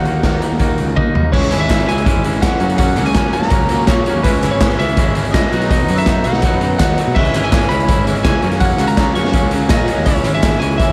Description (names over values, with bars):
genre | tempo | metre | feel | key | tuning
indie rock | 165 BPM | 4/4 | straight | C# dorian | A4 = 440 Hz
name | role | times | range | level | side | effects
lightly driven lead guitar | melody | 0.0-10.9 s | B4 to C#6 | -23 LUFS | equal | none
overdriven electric guitar | riff | 0.0-10.9 s | F#2 to F#4 | -27 LUFS | equal | none
overdriven electric guitar | riff | 0.0-10.9 s | F#2 to D#4 | -24 LUFS | equal | lush chorus
fuzz picked electric bass | bass | 0.0-10.9 s | G#1 to B2 | -21 LUFS | equal | overdrive
raw garage drum kit | drums | 0.1-10.9 s | crash cymbal, hi-hat, kick drum, snare drum, toms | -18 LUFS | equal | none
metallic FM bell | second line | 1.0-10.9 s | B5 to C#7 | -35 LUFS | equal | none
lush unison pad | sustained chords | 2.1-10.9 s | D#3 to C#5 | -32 LUFS | equal | none
group handclap | percussion | 1.5-10.5 s | none | -33 LUFS | equal | none
room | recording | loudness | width
light reverb | none | -15 LUFS | mono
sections
0.0-1.3 A section; 1.3-10.9 B section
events
drum fill 1.0-1.3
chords
0.0 D#m; 1.3 C#m; 2.6 F#add9; 4.3 C#m; 5.5 B; 7.2 C#m; 8.4 F#add9; 10.1 C#m